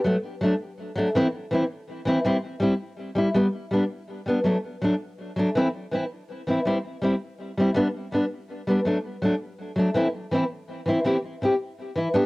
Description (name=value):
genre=highlife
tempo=109 BPM (dotted quarters)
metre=12/8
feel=straight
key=unclear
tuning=A4 = 438 Hz
part: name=fingerpicked steel-string acoustic guitar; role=solo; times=0.0-12.3 s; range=E3 to G4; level=-22 LUFS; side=equal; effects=cassette tape, tape echo
room=moderate small room reverb, RT60 0.6 s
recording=home recording on cassette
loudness=-23 LUFS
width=side -22 dB against mid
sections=0.0-3.4 A section; 3.4-12.3 B section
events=none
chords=0.0 D; 1.1 C/E; 2.2 C; 3.4 G; 4.5 D; 5.6 C/E; 6.7 C; 7.8 G; 8.9 D; 10.0 C/E; 11.1 C